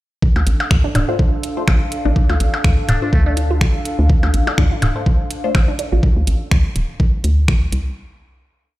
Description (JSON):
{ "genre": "minimal techno", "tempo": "124 BPM", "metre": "4/4", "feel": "swing 56% on 16ths", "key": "D minor", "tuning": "A4 = 440 Hz", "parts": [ { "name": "electronic kick drum", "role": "drums", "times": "0.2-7.6 s", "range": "none", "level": "-15 LUFS", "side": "equal", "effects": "overdrive" }, { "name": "warbly tape-like pad", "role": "texture", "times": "0.2-6.0 s", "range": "D4 to F5", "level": "-27 LUFS", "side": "equal", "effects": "chorus, built-in reverb, sidechain pumping" }, { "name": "hollow knocking FM bass", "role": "bass", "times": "0.4-7.8 s", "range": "D1 to D2", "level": "-17 LUFS", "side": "equal", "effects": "sidechain pumping" }, { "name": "electronic percussion blips and toms", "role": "percussion", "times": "0.4-5.7 s", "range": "none", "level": "-21 LUFS", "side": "equal", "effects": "overdrive, dub echo" }, { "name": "garage drum kit", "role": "drums", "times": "0.5-7.8 s", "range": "finger snaps, hi-hat", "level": "-26 LUFS", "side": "right 1 dB", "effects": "overdrive" }, { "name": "resonant blip pluck", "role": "riff", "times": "0.8-6.0 s", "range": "D4 to F4", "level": "-26 LUFS", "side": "equal", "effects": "phaser, sidechain pumping, dub echo" }, { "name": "filtered dub chord stab", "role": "stabs", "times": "1.1-5.5 s", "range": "A3 to C5", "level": "-26 LUFS", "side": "left 5 dB", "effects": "phaser, dub echo" }, { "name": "trumpet with metal mute", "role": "melody", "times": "2.9-3.3 s", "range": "A3 to D4", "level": "-29 LUFS", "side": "equal", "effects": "dub echo" } ], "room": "little or no reverb", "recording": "played on a big sound system in a bare room, large studio reverb", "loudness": "-14 LUFS", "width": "side -17 dB against mid", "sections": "0.2-8.0 groove", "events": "none", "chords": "0.2 Dm", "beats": "| 0.23 0.71 1.19 1.68 | 2.16 2.65 3.13 3.61 | 4.10 4.58 5.06 5.55 | 6.03 6.51 7.00 7.48" }